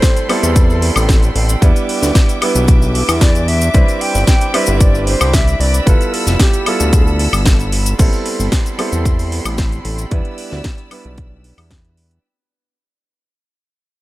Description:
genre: nu-disco, nu disco.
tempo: 113 BPM.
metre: 4/4.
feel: straight.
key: A minor.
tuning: A4 = 440 Hz.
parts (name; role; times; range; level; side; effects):
hollow concert flute; melody; 0.0-7.7 s; G4 to G5; -22 LUFS; left 1 dB; tape echo.
clear concert grand piano; accompaniment; 0.0-12.2 s; G3 to B4; -21 LUFS; right 3 dB; none.
rich studio string section; sustained chords; 0.0-12.2 s; C4 to E6; -26 LUFS; right 1 dB; sidechain pumping.
electronic kick drum; drums; 0.0-11.8 s; none; -12 LUFS; equal; none.
house drum kit; drums; 0.0-12.2 s; crash cymbal, hi-hat, snare drum, woodblock; -21 LUFS; left 1 dB; none.
cabasa; percussion; 0.0-10.1 s; none; -25 LUFS; left 3 dB; none.
fat analog bass; bass; 0.4-12.2 s; F1 to E2; -16 LUFS; equal; tube saturation.
room: studio ambience.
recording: none.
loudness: -11 LUFS.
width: side -17 dB against mid.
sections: 0.0-8.0 A section; 8.0-12.2 B section.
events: drop 0.0-8.0; fade-out 8.0-12.2.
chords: 0.0 Am9; 1.6 Em7; 3.7 Cmaj9; 5.9 G13; 8.0 Am9; 10.1 Em7.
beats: 0.03 0.56 1.09 | 1.62 2.15 2.68 3.21 | 3.75 4.28 4.81 5.34 | 5.87 6.40 6.93 7.46 | 7.99 8.52 9.05 9.59 | 10.12 10.65 11.18 11.71.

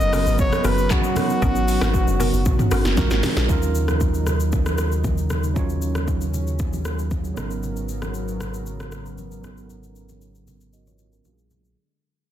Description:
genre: amapiano.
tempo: 116 BPM.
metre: 4/4.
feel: straight.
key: Eb minor.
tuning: A4 = 439 Hz.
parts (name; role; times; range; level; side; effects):
trumpet with bucket mute; melody; 0.0-3.0 s; Gb4 to Eb5; -25 LUFS; left 1 dB; ping-pong delay.
tine electric piano; accompaniment; 0.0-11.8 s; Gb3 to Eb5; -30 LUFS; right 9 dB; medium tremolo, low-pass filter.
warm analog pad; sustained chords; 0.0-11.8 s; Db3 to Bb4; -30 LUFS; right 1 dB; chorus, low-pass filter.
deep log drum bass; bass; 0.0-3.5 s; Gb1 to Bb1; -22 LUFS; equal; none.
deep house drum kit; drums; 0.0-11.8 s; handclaps, hi-hat, kick drum, rim click, shaker, snare drum, toms; -24 LUFS; equal; overdrive.
hollow square pluck; stabs; 0.1-2.9 s; Cb4 to Bb4; -30 LUFS; left 2 dB; chorus, ping-pong delay.
congas; percussion; 0.1-11.6 s; none; -32 LUFS; left 3 dB; none.
sub bass with octave; bass; 3.5-11.8 s; Ab1 to Eb2; -25 LUFS; equal; none.
room: light reverb.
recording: dense, heavily limited modern master.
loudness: -19 LUFS.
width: side -11 dB against mid.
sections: 0.0-3.5 A section; 3.5-11.8 B section.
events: drop 0.0-3.5; drum fill 3.0-3.5; fade-out 3.5-11.8; filter sweep 3.5-11.8; break 10.7-11.8.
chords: 0.0 Abm11; 3.0 Bb7b13; 3.5 Ebm7; 7.4 Abm11; 11.2 Bb7b13.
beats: 0.39 0.91 | 1.42 1.94 2.46 2.97 | 3.49 4.01 4.53 5.04 | 5.56 6.08 6.59 7.11 | 7.63 8.15 8.66 9.18 | 9.70 10.22 10.73 11.25.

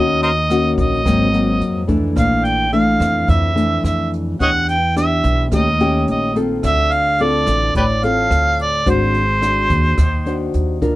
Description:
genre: bossa nova.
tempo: 108 BPM.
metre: 4/4.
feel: straight.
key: unclear.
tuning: A4 = 439 Hz.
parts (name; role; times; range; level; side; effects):
mellow harmonica; melody; 0.0-10.5 s; G4 to G5; -18 LUFS; right 1 dB; none.
nylon-string guitar; accompaniment; 0.0-11.0 s; F2 to C5; -19 LUFS; left 2 dB; none.
upright bass; bass; 0.0-11.0 s; Ab1 to F2; -20 LUFS; equal; none.
jazz brush drum kit; drums; 0.2-10.9 s; hi-hat, kick drum, rim click; -23 LUFS; equal; none.
room: light reverb.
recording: close, detailed microphones.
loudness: -14 LUFS.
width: side -17 dB against mid.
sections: 0.0-11.0 A section.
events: none.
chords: 0.0 Ebm7; 1.1 Ab9; 2.2 Bbmaj7#11; 4.4 Em7; 5.5 Eb7#11; 6.6 Dm7; 8.9 Ab7#11.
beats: 0.50 1.05 1.61 | 2.17 2.73 3.28 3.84 | 4.40 4.96 5.52 6.07 | 6.63 7.19 7.75 8.31 | 8.87 9.42 9.98 10.54.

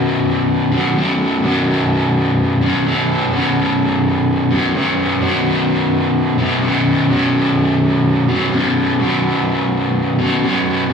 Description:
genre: rock.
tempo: 127 BPM.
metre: 4/4.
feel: straight.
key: unclear.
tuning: A4 = 441 Hz.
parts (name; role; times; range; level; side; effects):
biting overdriven guitar; solo; 0.0-10.9 s; B1 to B2; -14 LUFS; equal; harmonic tremolo, slapback echo.
room: light reverb.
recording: live gig heard through the venue's PA, club ambience.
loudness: -14 LUFS.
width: side -6 dB against mid.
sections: 0.0-10.9 A section.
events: none.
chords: 0.0 B5.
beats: 0.02 0.49 0.97 | 1.44 1.91 2.39 2.86 | 3.33 3.81 4.28 4.75 | 5.22 5.70 6.17 6.64 | 7.12 7.59 8.06 8.54 | 9.01 9.49 9.96 10.44 | 10.91.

